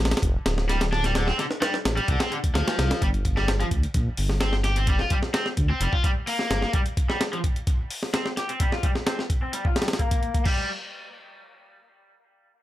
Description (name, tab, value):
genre	breakbeat, breaks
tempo	129 BPM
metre	4/4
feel	straight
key	G minor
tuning	A4 = 439 Hz
part	dark detuned saw bass	bass	0.0-6.7 s	D1 to D2	-25 LUFS	equal	none
part	breakbeat sampler-style drum kit	drums	0.1-10.6 s	crash cymbal, hi-hat, kick drum, snare drum	-25 LUFS	equal	none
part	cranked stack guitar	riff	0.7-10.7 s	D3 to G4	-28 LUFS	left 1 dB	overdrive, tube saturation, low-pass filter, dub echo
room	little or no reverb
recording	none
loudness	-22 LUFS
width	side -14 dB against mid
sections	0.0-3.0 A section; 3.0-10.5 B section; 10.5-12.6 C section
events	drop 0.0-3.0; filter sweep on overdriven electric guitar 3.0-10.5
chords	0.0 Dm7; 3.0 Gm; 10.5 N.C.